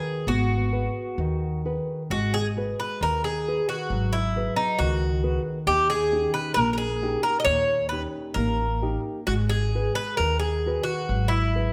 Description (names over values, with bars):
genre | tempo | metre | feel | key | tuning
fado-style ballad | 67 BPM | 2/4 | rubato | G# minor | A4 = 441 Hz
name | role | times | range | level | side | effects
Irish bouzouki | melody | 0.0-11.7 s | D#4 to D#5 | -28 LUFS | equal | none
nylon-string guitar | accompaniment | 0.0-11.7 s | A#2 to B4 | -32 LUFS | equal | none
upright bass | bass | 0.3-11.7 s | G#1 to D#2 | -30 LUFS | equal | none
room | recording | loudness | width
moderate recital hall reverb, RT60 1.4 s | none | -25 LUFS | mono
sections
0.0-2.1 A section; 2.1-11.7 A section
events
none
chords
0.0 G#m7; 5.7 D#7; 9.3 G#m7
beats
| 0.26 1.18 | 2.10 3.01 | 3.90 4.79 | 5.67 6.56 | 7.46 8.36 | 9.28 10.20 | 11.09